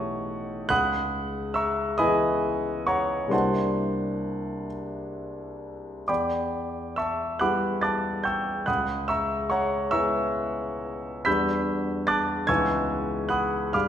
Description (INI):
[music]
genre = classical, impressionist solo piano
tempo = 42-50 BPM (dotted quarters)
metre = 6/8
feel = rubato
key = unclear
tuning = A4 = 442 Hz
[part]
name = clear concert grand piano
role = solo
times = 0.0-13.9 s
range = B1 to B6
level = -24 LUFS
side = equal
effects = none
[sound]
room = wet recital hall reverb, RT60 1.5 s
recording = recorded in a church or concert hall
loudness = -24 LUFS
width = side -9 dB against mid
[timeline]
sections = 0.0-13.9 A section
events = none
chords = 0.0 A9/B; 0.7 C#m7; 3.3 C9; 6.1 Em9; 8.7 C#m7; 11.3 Em9; 12.5 C#m11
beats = | 0.70 1.98 | 3.32 4.69 | 6.09 7.41 | 8.68 9.93 | 11.26 12.48 | 13.74